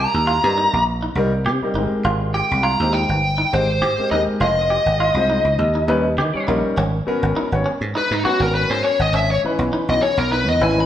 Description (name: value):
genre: jazz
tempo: 102 BPM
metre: 4/4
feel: swing 54% on 16ths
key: G# minor from 6.8 s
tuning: A4 = 441 Hz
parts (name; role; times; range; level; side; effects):
- smooth overdriven lead guitar; melody; 0.0-10.9 s; D#4 to B5; -19 LUFS; left 1 dB; none
- warm baby grand piano; accompaniment; 0.0-10.9 s; E3 to Db5; -24 LUFS; left 1 dB; none
- clean electric guitar; stabs; 0.0-10.8 s; C#4 to G4; -25 LUFS; right 1 dB; none
- dry thumbed slap bass; bass; 0.0-10.8 s; F1 to Eb3; -21 LUFS; right 1 dB; none
room: wet stone room reverb, RT60 1.3 s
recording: band playing live in one room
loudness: -16 LUFS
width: side -11 dB against mid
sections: 0.0-6.8 A section; 6.8-10.9 B section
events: lead electric guitar solo 6.8-10.9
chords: 0.0 Cm7; 1.8 Abmaj9; 4.4 Fm7; 5.6 Eb7b13; 6.8 G#m11; 9.1 C#m9/G#